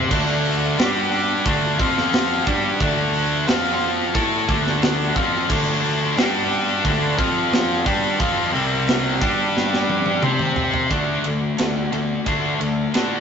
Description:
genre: hard rock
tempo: 89 BPM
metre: 4/4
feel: straight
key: D minor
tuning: A4 = 440 Hz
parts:
  - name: bright tonewheel organ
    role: sustained chords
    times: 0.0-10.9 s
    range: none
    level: barely audible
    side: none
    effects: none
  - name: heavy high-gain guitar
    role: riff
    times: 0.0-13.2 s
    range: C3 to C5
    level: -21 LUFS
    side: left 3 dB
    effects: distortion
  - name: tight distorted guitar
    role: riff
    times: 0.0-13.2 s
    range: C3 to C5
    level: -27 LUFS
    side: right 7 dB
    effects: distortion
  - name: fuzz picked electric bass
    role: bass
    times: 0.0-13.2 s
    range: C2 to C3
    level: -26 LUFS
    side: right 1 dB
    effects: overdrive
  - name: tight metal drum kit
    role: drums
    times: 0.1-13.1 s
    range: crash cymbal, hi-hat, kick drum, ride cymbal, snare drum, toms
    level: -23 LUFS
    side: right 1 dB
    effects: none
room: moderate stone room reverb, RT60 1.1 s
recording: rough rehearsal-room recording, tube saturation, nothing above 7.7 kHz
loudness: -17 LUFS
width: side -7 dB against mid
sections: 0.0-10.9 A section; 10.9-13.2 B section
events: drum fill 9.6-10.9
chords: 0.1 Dm; 0.8 G5; 1.5 Dm; 1.8 F5; 2.5 Dm; 3.5 F5; 4.2 Dm; 6.2 G5; 6.9 Dm; 7.2 F5; 7.9 Dm; 8.5 C5; 9.2 G5; 10.2 C5; 10.9 D5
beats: | 0.11 0.79 1.46 2.13 | 2.81 3.48 4.16 4.83 | 5.51 6.18 6.86 7.54 | 8.21 8.89 9.56 10.24 | 10.92 11.59 12.27 12.95

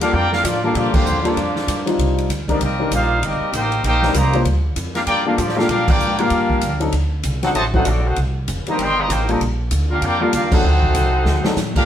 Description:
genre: jazz, big band swing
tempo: 194 BPM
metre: 4/4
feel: swing 61% on 8ths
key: G minor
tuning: A4 = 440 Hz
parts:
  - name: clear trumpet section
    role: melody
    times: 0.0-11.6 s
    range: Bb3 to C6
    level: -21 LUFS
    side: right 1 dB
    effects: none
  - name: clear trombone section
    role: second line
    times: 0.0-11.6 s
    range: C3 to G4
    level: -24 LUFS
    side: left 1 dB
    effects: none
  - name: warm grand piano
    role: accompaniment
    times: 0.0-11.9 s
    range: F#3 to C5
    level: -21 LUFS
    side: left 2 dB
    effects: none
  - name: upright bass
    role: bass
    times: 0.0-11.9 s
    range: F1 to Bb2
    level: -21 LUFS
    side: equal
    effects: none
  - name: swinging big-band drum kit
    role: drums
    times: 0.0-11.8 s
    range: crash cymbal, hi-hat, kick drum, ride cymbal, snare drum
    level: -23 LUFS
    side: equal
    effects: none
  - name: bright saxophone section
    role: melody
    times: 11.8-11.9 s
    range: D4 to F5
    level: -19 LUFS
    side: right 1 dB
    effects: none
room: moderate studio reverb, RT60 0.8 s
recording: band playing live in one room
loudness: -16 LUFS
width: side -10 dB against mid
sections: 0.0-11.9 A section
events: band accent 0.9, 5.8, 10.5; drum fill 11.3-11.6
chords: 0.0 Gm7; 2.0 Cm7; 4.5 Gm7; 6.9 D7b9; 8.2 Cm7; 9.4 Gm7; 10.6 D7b9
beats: 0.13 0.44 | 0.75 1.06 1.36 1.68 | 1.98 2.29 2.60 2.91 | 3.22 3.53 3.84 4.15 | 4.46 4.77 5.08 5.38 | 5.69 6.00 6.31 6.62 | 6.93 7.24 7.55 7.86 | 8.17 8.47 8.78 9.09 | 9.40 9.71 10.02 10.33 | 10.64 10.95 11.26 11.57

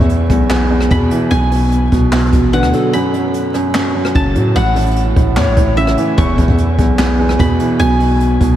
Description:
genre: hip hop, trap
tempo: 148 BPM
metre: 4/4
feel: half-time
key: unclear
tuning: A4 = 440 Hz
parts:
  - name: guzheng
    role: melody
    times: 0.0-8.6 s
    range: E5 to C#6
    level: -22 LUFS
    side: left 1 dB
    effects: analog delay
  - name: felt-muted upright piano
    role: accompaniment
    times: 0.0-8.6 s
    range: E2 to F#3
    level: -14 LUFS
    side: right 1 dB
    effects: none
  - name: long sustained 808-style bass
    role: bass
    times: 0.0-8.6 s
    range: E1 to A2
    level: -16 LUFS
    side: equal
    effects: none
  - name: jazz brush drum kit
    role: drums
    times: 0.1-8.5 s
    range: handclaps, hi-hat, kick drum, rim click, snare drum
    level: -18 LUFS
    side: equal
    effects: none
  - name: polished pan flute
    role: second line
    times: 2.5-2.9, 5.4-5.7 s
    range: A4 to C#5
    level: -27 LUFS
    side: left 4 dB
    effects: analog delay
room: moderate cathedral reverb, RT60 7.0 s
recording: dreamy mix soaked in reverb, vinyl crackle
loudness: -11 LUFS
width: side -12 dB against mid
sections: 0.0-8.6 A section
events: break 2.9-3.7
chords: 0.0 E5; 1.3 Bm7; 2.9 F#m; 4.6 A; 6.2 E5; 7.8 N.C.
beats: 0.10 0.50 0.91 | 1.31 1.72 2.12 2.53 | 2.93 3.34 3.75 4.15 | 4.55 4.96 5.37 5.77 | 6.18 6.58 6.99 7.39 | 7.80 8.20

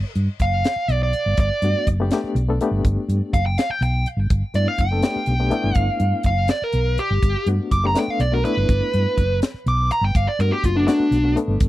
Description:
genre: electric jazz fusion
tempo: 82 BPM (dotted quarters)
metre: 6/8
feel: straight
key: G major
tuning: A4 = 440 Hz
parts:
  - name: hollow-body short-scale fingered electric bass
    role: bass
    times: 0.0-11.7 s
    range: F#1 to G2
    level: -20 LUFS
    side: equal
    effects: none
  - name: tight funk drum kit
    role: drums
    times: 0.2-11.7 s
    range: hi-hat, kick drum, snare drum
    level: -21 LUFS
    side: equal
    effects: none
  - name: dark smooth lead guitar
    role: melody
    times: 0.4-11.4 s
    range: D4 to D6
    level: -22 LUFS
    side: right 1 dB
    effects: overdrive
  - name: barky reed electric piano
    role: accompaniment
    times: 1.6-11.7 s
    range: A3 to A4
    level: -25 LUFS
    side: left 4 dB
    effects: overdrive, fast tremolo
room: little or no reverb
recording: dry, close 1970s-style studio recording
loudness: -18 LUFS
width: side -15 dB against mid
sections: 0.0-11.7 A section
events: lead electric guitar solo 0.0-11.7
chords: 0.0 Gmaj9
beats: 0.65 | 1.38 2.11 | 2.84 3.58 | 4.31 5.04 | 5.77 6.50 | 7.23 7.96 | 8.69 9.42 | 10.15 10.88 | 11.61

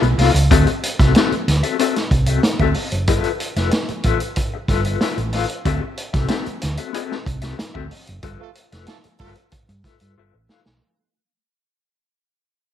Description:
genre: funk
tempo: 93 BPM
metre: 4/4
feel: straight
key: unclear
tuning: A4 = 440 Hz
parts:
  - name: mellow electric guitar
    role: accompaniment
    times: 0.0-10.7 s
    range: B3 to F5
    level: -22 LUFS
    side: left 10 dB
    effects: tremolo
  - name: hollow-body short-scale fingered electric bass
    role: bass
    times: 0.0-10.8 s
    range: F1 to G2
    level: -19 LUFS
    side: right 1 dB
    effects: none
  - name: vintage drum kit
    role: drums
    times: 0.0-10.8 s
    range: hi-hat, kick drum, snare drum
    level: -20 LUFS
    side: right 1 dB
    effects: none
  - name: warm horn section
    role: second line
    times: 8.4-9.3 s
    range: A3 to A4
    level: -49 LUFS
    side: right 12 dB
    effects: none
room: light reverb, small room ambience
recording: 1960s-style stereo with parts hard left and right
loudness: -17 LUFS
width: side -10 dB against mid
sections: 0.5-10.8 A section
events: fade-out 0.5-10.8; band accent 8.2-10.8; drum fill 10.2-10.8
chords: 0.0 G9 (rootless); 0.5 D9; 3.1 G13; 5.7 D9; 8.2 G13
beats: | 0.51 1.15 1.79 2.44 | 3.08 3.72 4.37 5.01 | 5.66 6.30 6.95 7.59 | 8.23 8.88 9.52 10.17

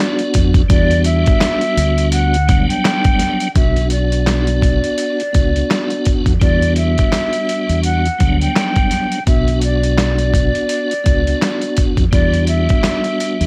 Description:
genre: hip hop, boom-bap hip-hop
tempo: 84 BPM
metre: 4/4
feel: swing 58% on 16ths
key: B minor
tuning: A4 = 438 Hz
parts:
  - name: breathy concert flute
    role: melody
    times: 0.0-13.5 s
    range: D5 to G5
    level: -23 LUFS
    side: equal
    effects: high-pass filter, low-pass filter
  - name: tonewheel organ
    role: accompaniment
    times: 0.0-13.5 s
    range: F#3 to F#4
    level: -22 LUFS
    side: equal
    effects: overdrive, chorus vibrato, fast rotary speaker, cassette tape, high-pass filter, low-pass filter
  - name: trip hop sampler-style drum kit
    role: drums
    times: 0.2-13.5 s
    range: handclaps, hi-hat, kick drum, snare drum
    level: -19 LUFS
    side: equal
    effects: none
  - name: deep dub fingered electric bass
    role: bass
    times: 0.3-13.5 s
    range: B1 to E#2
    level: -18 LUFS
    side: equal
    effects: none
room: little or no reverb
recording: vinyl crackle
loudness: -15 LUFS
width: mono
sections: 0.0-3.6 A section; 3.6-13.5 B section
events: none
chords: 0.0 Bm; 0.7 Em7; 3.6 Bm; 6.4 Em7; 9.3 Bm; 12.1 Em7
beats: | 0.70 1.41 2.13 2.84 | 3.56 4.27 4.98 5.70 | 6.41 7.13 7.84 8.55 | 9.27 9.98 10.70 11.41 | 12.13 12.84

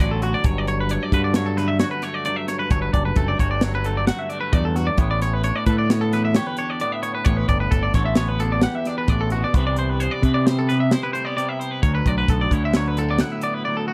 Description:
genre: math rock and midwest emo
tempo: 132 BPM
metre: 5/4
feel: straight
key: unclear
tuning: A4 = 440 Hz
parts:
  - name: twangy electric guitar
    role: accompaniment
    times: 0.0-13.9 s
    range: D2 to A4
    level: -30 LUFS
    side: equal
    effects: lush chorus
  - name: twangy electric guitar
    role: arpeggios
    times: 0.0-13.9 s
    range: F#4 to F#5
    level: -27 LUFS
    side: equal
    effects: none
  - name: growling picked electric bass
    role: bass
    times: 0.0-13.2 s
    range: F#1 to C3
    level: -24 LUFS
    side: equal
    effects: overdrive
  - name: crisp fusion drum kit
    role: drums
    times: 0.2-13.5 s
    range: hi-hat, kick drum, snare drum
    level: -24 LUFS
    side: equal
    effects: none
room: little or no reverb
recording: dry, close 1970s-style studio recording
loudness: -21 LUFS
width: mono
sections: 0.0-13.9 A section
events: none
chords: 0.4 Gmaj9; 5.0 A9sus4; 9.5 Cmaj9; 11.8 D69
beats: | 0.44 0.89 1.34 1.80 2.25 | 2.70 3.16 3.61 4.07 4.52 | 4.98 5.43 5.89 6.34 6.80 | 7.26 7.71 8.17 8.63 9.08 | 9.54 10.00 10.46 10.91 11.37 | 11.82 12.28 12.73 13.19 13.64

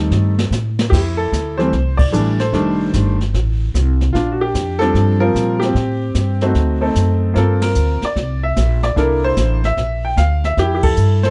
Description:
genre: jazz piano trio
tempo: 149 BPM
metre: 4/4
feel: swing 66% on 8ths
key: F major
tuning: A4 = 441 Hz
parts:
  - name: clear upright piano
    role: melody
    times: 0.0-11.3 s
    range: Eb3 to G5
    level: -20 LUFS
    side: equal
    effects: none
  - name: upright bass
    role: bass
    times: 0.0-11.3 s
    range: F1 to Bb2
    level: -19 LUFS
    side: equal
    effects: none
  - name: jazz brush drum kit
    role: drums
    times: 0.1-11.3 s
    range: brushed snare drum, crash cymbal, hi-hat, kick drum, ride cymbal, snare drum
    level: -23 LUFS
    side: equal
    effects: none
room: little or no reverb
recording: dark, warm production, nothing above 10.4 kHz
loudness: -17 LUFS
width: mono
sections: 0.9-11.3 A section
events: drum fill 0.1-0.9; band accent 1.9, 7.6, 10.8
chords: 0.0 F9 (rootless); 0.9 Fmaj7; 2.5 F13; 4.1 Bb6; 5.7 Am7; 6.5 D7b9; 7.4 Gm7; 9.0 C13; 10.6 Fmaj7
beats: 0.11 0.51 | 0.92 1.32 1.72 2.12 | 2.52 2.93 3.33 3.73 | 4.13 4.54 4.94 5.34 | 5.74 6.15 6.55 6.95 | 7.35 7.75 8.16 8.56 | 8.96 9.36 9.76 10.17 | 10.57 10.97

